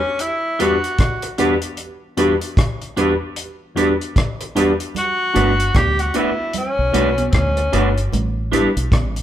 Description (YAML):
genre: lovers rock reggae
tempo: 76 BPM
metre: 4/4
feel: swing 60% on 16ths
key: E dorian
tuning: A4 = 439 Hz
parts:
  - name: warm tenor saxophone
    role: melody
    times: 0.0-8.0 s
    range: C4 to G4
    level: -20 LUFS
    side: left 1 dB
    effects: none
  - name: deep reggae drum kit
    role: drums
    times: 0.2-9.2 s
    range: hi-hat, kick drum, rim click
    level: -20 LUFS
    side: equal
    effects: none
  - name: tine electric piano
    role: accompaniment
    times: 0.6-8.7 s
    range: E2 to F#4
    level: -23 LUFS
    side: left 1 dB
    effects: phaser
  - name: electric guitar through a small old amp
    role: stabs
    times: 0.6-8.7 s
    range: D4 to B4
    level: -21 LUFS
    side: right 1 dB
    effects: none
  - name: congas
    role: percussion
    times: 4.9-9.1 s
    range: none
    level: -30 LUFS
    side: right 5 dB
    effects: dub echo
  - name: deep dub fingered electric bass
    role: bass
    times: 5.4-9.2 s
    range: G1 to D2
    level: -20 LUFS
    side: equal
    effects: none
room: moderate large studio reverb, RT60 1.4 s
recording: band playing live in one room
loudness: -16 LUFS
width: side -11 dB against mid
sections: 0.0-9.2 A section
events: none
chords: 0.0 Em7; 5.0 Gmaj7; 8.1 A9sus4